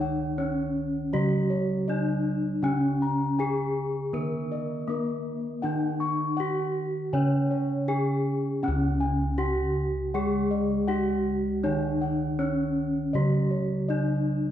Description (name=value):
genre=Javanese gamelan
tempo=80 BPM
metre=4/4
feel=straight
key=C# pelog barang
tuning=A4 = 443 Hz
part: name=gamelan-type bronze metallophone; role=melody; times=0.0-14.5 s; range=A#3+20c to C#5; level=-29 LUFS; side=left 1 dB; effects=none
part: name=gamelan-type bronze metallophone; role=accompaniment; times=0.0-14.5 s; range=C#3 to C#4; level=-30 LUFS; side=right 2 dB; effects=none
part: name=gamelan-type bossed gongs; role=arpeggios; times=0.0-14.3 s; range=A#4+20c to C#6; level=-34 LUFS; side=left 3 dB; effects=none
part: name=gamelan-type bossed gongs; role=bass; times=0.0-14.5 s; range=C#2 to D4+50c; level=-30 LUFS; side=equal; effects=none
room=wet recital hall reverb, RT60 1.8 s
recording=heard from further back in the room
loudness=-24 LUFS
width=side -11 dB against mid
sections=0.0-14.5 A section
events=none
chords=none